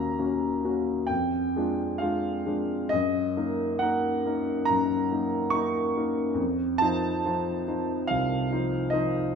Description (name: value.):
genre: classical, romantic nocturne for solo piano.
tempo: 65-73 BPM.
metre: 4/4.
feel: rubato.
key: unclear.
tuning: A4 = 441 Hz.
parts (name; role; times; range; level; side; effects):
warm grand piano; solo; 0.0-9.3 s; C2 to Db6; -24 LUFS; equal; none.
room: moderate recital hall reverb, RT60 1.6 s.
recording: minimal, uncompressed stereo recording.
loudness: -24 LUFS.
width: side -6 dB against mid.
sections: 0.0-9.3 A section.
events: none.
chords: 0.0 Ebm7; 1.1 Ddim/F; 2.9 Ebm/Gb; 6.4 F7.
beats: 0.18 1.10 2.01 | 2.90 3.80 4.68 5.54 | 6.39 7.25 8.10 8.93.